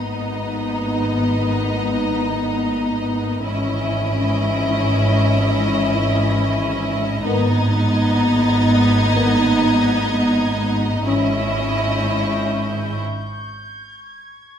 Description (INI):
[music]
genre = cinematic, suspense film score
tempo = free time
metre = none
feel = none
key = G# phrygian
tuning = A4 = 440 Hz
[part]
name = dark studio violin section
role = melody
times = 0.0-13.0 s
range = D#5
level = -28 LUFS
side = left 1 dB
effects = none
[part]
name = clear studio violin section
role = second line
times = 0.0-13.0 s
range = D#4 to E4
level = -23 LUFS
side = equal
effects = none
[part]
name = warm studio viola section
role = accompaniment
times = 0.0-13.0 s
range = B3 to C#4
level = -22 LUFS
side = equal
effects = none
[part]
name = mellow French horn section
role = sustained chords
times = 0.0-11.3 s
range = D#3 to C#4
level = -24 LUFS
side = left 3 dB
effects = none
[part]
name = dark studio double bass section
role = bass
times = 0.0-13.0 s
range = G#1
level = -24 LUFS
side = right 2 dB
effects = none
[part]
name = warm studio cello section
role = bass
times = 0.0-13.0 s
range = G#2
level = -24 LUFS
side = right 1 dB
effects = none
[part]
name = dark studio violin section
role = texture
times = 3.4-14.6 s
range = C#5 to D7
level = -33 LUFS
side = equal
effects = none
[sound]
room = wet stone room reverb, RT60 1.2 s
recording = none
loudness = -16 LUFS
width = side -8 dB against mid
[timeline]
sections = 0.0-14.6 A section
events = break 13.0-14.6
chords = 0.0 G#m; 3.4 C#madd9/G#; 7.3 G#m; 11.1 C#madd9/G#; 13.0 N.C.